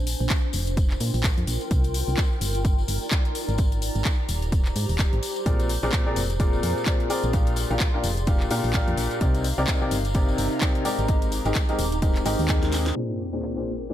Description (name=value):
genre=piano house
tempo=128 BPM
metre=4/4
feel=swing 58% on 16ths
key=Bb mixolydian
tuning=A4 = 439 Hz
part: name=solid FM bass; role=bass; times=0.0-12.9 s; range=Eb1 to Bb2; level=-26 LUFS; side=equal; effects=sidechain pumping
part: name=granular cloud pad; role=texture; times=0.0-13.9 s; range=C4 to D6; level=-32 LUFS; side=equal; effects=built-in reverb, sidechain pumping
part: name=house drum kit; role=drums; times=0.1-13.5 s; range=crash cymbal, handclaps, hi-hat, snare drum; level=-31 LUFS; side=left 1 dB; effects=overdrive
part: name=tambourine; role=percussion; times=0.1-12.9 s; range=none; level=-38 LUFS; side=left 6 dB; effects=none
part: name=electronic kick drum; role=drums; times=0.3-12.6 s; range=none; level=-23 LUFS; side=equal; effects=overdrive
part: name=clear upright piano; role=riff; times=5.5-13.9 s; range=Ab2 to F5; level=-27 LUFS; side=left 2 dB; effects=sidechain pumping, low-pass filter, ping-pong delay
part: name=sub drop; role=sound effects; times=13.0-13.9 s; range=none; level=-34 LUFS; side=equal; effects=none
room=little or no reverb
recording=low-pass filter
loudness=-21 LUFS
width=side -12 dB against mid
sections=0.0-13.0 A section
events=drum fill 12.6-13.0; band accent 12.8; impact 13.0-13.9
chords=0.0 Gm7; 1.7 Cm9; 3.6 Abmaj9; 5.5 Bb9; 7.3 Gm7; 9.2 Cm9; 11.1 Abmaj9; 13.0 Bb9